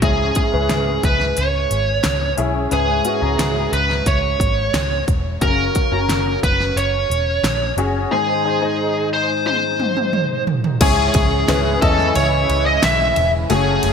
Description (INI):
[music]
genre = piano-driven pop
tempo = 89 BPM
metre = 4/4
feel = straight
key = C# minor from 10.8 s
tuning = A4 = 440 Hz
[part]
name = bluesy overdriven lead guitar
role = melody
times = 0.0-13.9 s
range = G#4 to E5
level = -19 LUFS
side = right 2 dB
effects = distortion
[part]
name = clear concert grand piano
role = accompaniment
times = 0.0-13.9 s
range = G#2 to A#5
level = -22 LUFS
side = left 5 dB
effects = ensemble chorus
[part]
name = vintage muted picked electric bass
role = bass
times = 0.0-13.9 s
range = E1 to E2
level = -22 LUFS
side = equal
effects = none
[part]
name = pop drum kit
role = drums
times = 0.0-13.9 s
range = crash cymbal, hi-hat, kick drum, ride cymbal, snare drum, toms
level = -21 LUFS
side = equal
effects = none
[part]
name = sweeping resonant pad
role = sustained chords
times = 10.8-13.9 s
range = C#3 to F#4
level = -27 LUFS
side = right 4 dB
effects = chorus
[sound]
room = light reverb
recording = bright 1980s-style digital production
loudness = -15 LUFS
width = side -6 dB against mid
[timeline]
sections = 0.0-10.8 A section; 10.8-13.9 B section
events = drum fill 9.5-10.8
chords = 0.0 F#; 8.1 G#; 10.8 C#m